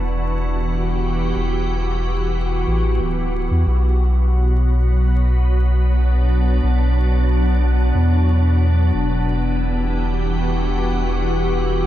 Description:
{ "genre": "ambient dub", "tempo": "91 BPM", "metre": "4/4", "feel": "swing 54% on 16ths", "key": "E minor", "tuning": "A4 = 440 Hz", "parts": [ { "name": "soft additive organ-like pad", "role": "sustained chords", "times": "0.0-11.9 s", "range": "B2 to G4", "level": "-22 LUFS", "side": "equal", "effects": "ensemble chorus, built-in reverb" }, { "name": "warm sub bass", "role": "bass", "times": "0.0-11.9 s", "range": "D1 to E2", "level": "-17 LUFS", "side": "equal", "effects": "none" } ], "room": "little or no reverb", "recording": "dark, warm production, vinyl crackle", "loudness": "-16 LUFS", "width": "side -13 dB against mid", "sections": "0.0-3.7 A section; 3.7-11.9 B section", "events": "none", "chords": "0.0 Em7; 3.7 Bm; 8.9 Em7" }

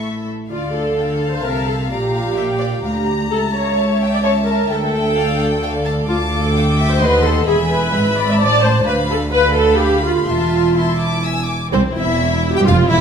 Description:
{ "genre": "quick classical-period movement for string orchestra", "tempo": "129 BPM", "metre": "3/4", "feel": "straight", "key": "D minor", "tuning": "A4 = 440 Hz", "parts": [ { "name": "warm chamber violin section", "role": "melody", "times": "0.0-13.0 s", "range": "C4 to E6", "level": "-25 LUFS", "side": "left 4 dB", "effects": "none" }, { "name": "warm chamber violin section", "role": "second line", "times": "0.0-13.0 s", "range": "A4 to B5", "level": "-24 LUFS", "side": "left 4 dB", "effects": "none" }, { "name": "warm studio viola section", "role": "accompaniment", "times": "0.0-13.0 s", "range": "A3 to E5", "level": "-18 LUFS", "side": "right 1 dB", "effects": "none" }, { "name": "dark chamber cello section", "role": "bass", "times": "0.0-13.0 s", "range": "C2 to D3", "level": "-21 LUFS", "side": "right 1 dB", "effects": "none" }, { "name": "dark chamber double bass section", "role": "bass", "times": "0.0-13.0 s", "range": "E1 to D#2", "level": "-22 LUFS", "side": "right 2 dB", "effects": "none" } ], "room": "wet recital hall reverb, RT60 1.6 s", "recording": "none", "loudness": "-14 LUFS", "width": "side -7 dB against mid", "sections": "0.5-11.7 A section; 11.7-13.0 B section", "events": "none", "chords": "0.0 A5; 0.5 Dm; 1.9 Bb; 3.3 A/C#; 4.7 Dmadd9; 7.0 D#dim7; 7.5 E7; 8.4 Am; 8.9 Bdim/D; 10.3 Am/E; 11.3 E; 11.7 Cadd11/E" }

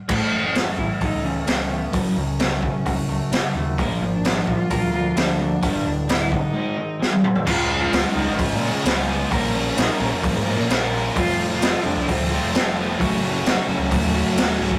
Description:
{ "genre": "quiet-loud alternative rock", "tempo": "130 BPM", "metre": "4/4", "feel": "straight", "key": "unclear", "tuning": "A4 = 440 Hz", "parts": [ { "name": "warm cello", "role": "melody", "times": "0.1-14.6 s", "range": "A3 to F4", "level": "-31 LUFS", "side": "equal", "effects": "none" }, { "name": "twangy electric guitar", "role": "arpeggios", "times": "0.1-7.5 s", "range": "Gb2 to Bb4", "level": "-37 LUFS", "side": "equal", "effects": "none" }, { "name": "raw garage guitar", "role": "riff", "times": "0.1-14.8 s", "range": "Db2 to Bb4", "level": "-27 LUFS", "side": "equal", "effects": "overdrive" }, { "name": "growling picked electric bass", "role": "bass", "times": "0.1-14.8 s", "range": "Db1 to Db3", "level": "-30 LUFS", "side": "equal", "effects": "overdrive" }, { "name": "raw garage drum kit", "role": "drums", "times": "0.1-14.8 s", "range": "crash cymbal, hi-hat, kick drum, snare drum, toms", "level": "-24 LUFS", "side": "equal", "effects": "none" }, { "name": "distorted electric guitar", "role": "riff", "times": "7.5-14.8 s", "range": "Db2 to Bb4", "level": "-30 LUFS", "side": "equal", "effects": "overdrive" } ], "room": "moderate studio reverb, RT60 0.6 s", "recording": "rough rehearsal-room recording, warm saturation", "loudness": "-21 LUFS", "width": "mono", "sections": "0.1-7.5 A section; 7.5-14.8 B section", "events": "drum fill 7.0-7.5", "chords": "0.1 A; 1.9 Gbm; 3.8 Bb; 5.6 G; 6.6 Ab; 7.5 Db; 9.3 Bbm; 11.2 F; 13.0 Gbm" }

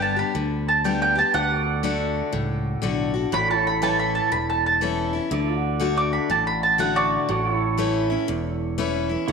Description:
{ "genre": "country", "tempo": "121 BPM", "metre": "4/4", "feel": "swing 64% on 8ths", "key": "D major", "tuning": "A4 = 440 Hz", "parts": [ { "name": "mandolin", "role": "melody", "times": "0.0-7.9 s", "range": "F#4 to D6", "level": "-22 LUFS", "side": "right 2 dB", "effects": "none" }, { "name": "picked steel-string acoustic guitar", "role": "accompaniment", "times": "0.0-9.3 s", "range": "E2 to G4", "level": "-26 LUFS", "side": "left 7 dB", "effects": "none" }, { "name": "pedal steel guitar", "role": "sustained chords", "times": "0.0-9.3 s", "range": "E4 to D5", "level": "-29 LUFS", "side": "right 9 dB", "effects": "lush chorus" }, { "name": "fingered electric bass", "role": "bass", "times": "0.0-9.3 s", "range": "E1 to D2", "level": "-28 LUFS", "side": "right 1 dB", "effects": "none" } ], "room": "wet echo chamber reverb, RT60 1.7 s, small room ambience", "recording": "1960s-style stereo with parts hard left and right", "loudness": "-20 LUFS", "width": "side -5 dB against mid", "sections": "0.0-9.3 A section", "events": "mandolin solo 0.0-9.3", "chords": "0.0 G; 1.3 D; 3.3 A; 5.3 D; 7.3 A" }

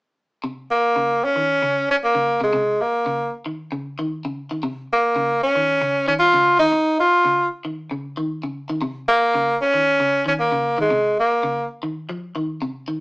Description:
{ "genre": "afrobeat", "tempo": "115 BPM", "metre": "4/4", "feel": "straight", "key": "Bb minor", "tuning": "A4 = 443 Hz", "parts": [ { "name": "electric guitar at the edge of break-up", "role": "arpeggios", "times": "0.4-13.0 s", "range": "C3 to F3", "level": "-28 LUFS", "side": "left 1 dB", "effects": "phaser" }, { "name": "clear tenor saxophone", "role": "melody", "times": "0.7-11.7 s", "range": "Ab3 to F4", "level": "-16 LUFS", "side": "equal", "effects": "none" } ], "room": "moderate studio reverb, RT60 0.6 s", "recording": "rough rehearsal-room recording, small speaker sound", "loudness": "-17 LUFS", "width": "side -26 dB against mid", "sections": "0.4-13.0 A section", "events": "none", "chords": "0.4 Bbmadd9" }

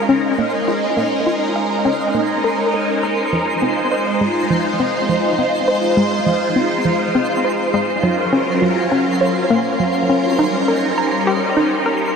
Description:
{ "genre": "ambient, sequencer-driven space music", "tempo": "102 BPM", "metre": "4/4", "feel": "straight", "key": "Bb minor", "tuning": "A4 = 436 Hz", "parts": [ { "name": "phased string machine", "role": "sustained chords", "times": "0.0-12.2 s", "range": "Gb3 to C5", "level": "-17 LUFS", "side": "equal", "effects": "ensemble chorus, phaser" }, { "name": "twinkling granular texture", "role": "texture", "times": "0.0-12.2 s", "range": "C5 to C6", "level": "-26 LUFS", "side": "equal", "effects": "built-in reverb" }, { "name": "hollow square pluck", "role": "riff", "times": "0.1-12.1 s", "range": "F3 to Bb5", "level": "-20 LUFS", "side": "equal", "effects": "chorus, tape echo" } ], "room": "wet huge ambient reverb, RT60 8.0 s", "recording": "none", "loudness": "-15 LUFS", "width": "side -6 dB against mid", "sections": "0.0-12.2 A section", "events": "fade-in on synth texture 0.0-12.2; filter sweep on synth arpeggio sound 0.0-12.2", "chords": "0.0 Bbm7; 3.3 Fm7; 8.0 Gbmaj7; 10.4 Eb7" }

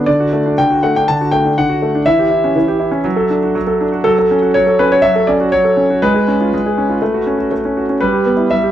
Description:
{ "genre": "classical-period piano sonatina", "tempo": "121 BPM", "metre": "4/4", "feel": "straight", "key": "unclear", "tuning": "A4 = 441 Hz", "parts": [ { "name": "bright concert grand piano", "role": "solo", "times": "0.0-8.7 s", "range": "D3 to A5", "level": "-12 LUFS", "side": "equal", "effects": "none" } ], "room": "light reverb", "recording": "dark, warm production", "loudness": "-12 LUFS", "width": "side -11 dB against mid", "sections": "0.0-8.7 A section", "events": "none", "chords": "0.1 D; 2.1 Em6; 3.1 D/F#; 4.1 F#m; 6.0 C#7/G#; 7.0 F#m/A; 8.0 Em/G" }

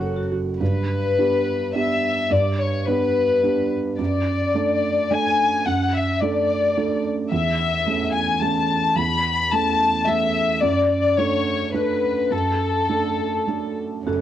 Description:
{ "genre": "neoclassical piano and strings", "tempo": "107 BPM", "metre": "3/4", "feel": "rubato", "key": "unclear", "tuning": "A4 = 441 Hz", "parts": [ { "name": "felt-muted upright piano", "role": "accompaniment", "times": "0.0-14.2 s", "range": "E2 to A4", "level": "-23 LUFS", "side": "right 4 dB", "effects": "cassette tape" }, { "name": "warm viola", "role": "accompaniment", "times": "0.0-0.3, 14.1-14.2 s", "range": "A3 to F#4", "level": "-33 LUFS", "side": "right 6 dB", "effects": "cassette tape" }, { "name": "vibraphone with medium hard mallets", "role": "arpeggios", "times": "0.0-0.3, 14.1-14.2 s", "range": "F#4 to C#5", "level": "-36 LUFS", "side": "left 8 dB", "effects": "cassette tape, tape echo" }, { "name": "rich double bass", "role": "bass", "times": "0.0-0.6, 14.1-14.2 s", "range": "F#1", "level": "-30 LUFS", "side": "left 1 dB", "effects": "none" }, { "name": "warm chamber violin section", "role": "melody", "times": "0.6-14.2 s", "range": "C#4 to B5", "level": "-21 LUFS", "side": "left 4 dB", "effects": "none" } ], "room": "moderate spring reverb, RT60 1.6 s, studio reverb", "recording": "home recording on cassette", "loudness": "-19 LUFS", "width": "side -11 dB against mid", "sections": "0.6-14.1 A section", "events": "none", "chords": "0.0 F#m; 0.6 G; 4.0 D/F#; 7.3 A/E; 10.6 D/F#" }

